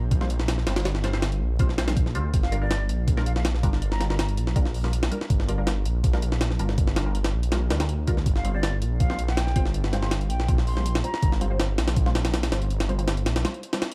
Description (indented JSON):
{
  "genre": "drum and bass, jungle",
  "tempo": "162 BPM",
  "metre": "4/4",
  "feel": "straight",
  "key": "unclear",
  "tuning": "A4 = 445 Hz",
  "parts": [
    { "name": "filtered dub chord stab", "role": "stabs", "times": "0.0-13.9 s", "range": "G3 to C5", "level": "-37 LUFS", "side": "equal", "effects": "phaser, ensemble chorus, dub echo" },
    { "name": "detuned saw bass", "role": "bass", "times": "0.0-13.4 s", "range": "G1 to D2", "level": "-28 LUFS", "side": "equal", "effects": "tube saturation" },
    { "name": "jungle sampler-style drum kit", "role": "drums", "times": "0.1-13.9 s", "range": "hi-hat, kick drum, snare drum", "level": "-28 LUFS", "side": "equal", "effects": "studio reverb" },
    { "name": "hollow concert flute", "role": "melody", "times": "2.4-4.2, 8.4-11.3 s", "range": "D5 to C6", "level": "-39 LUFS", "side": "equal", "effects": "dub echo" }
  ],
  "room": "digital ambience",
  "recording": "dark, warm production, vinyl crackle",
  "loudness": "-25 LUFS",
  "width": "mono",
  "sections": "0.0-13.9 A section",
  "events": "break 13.4-13.9",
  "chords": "0.0 Csus4/G; 2.3 Gm7; 8.3 Csus4/G"
}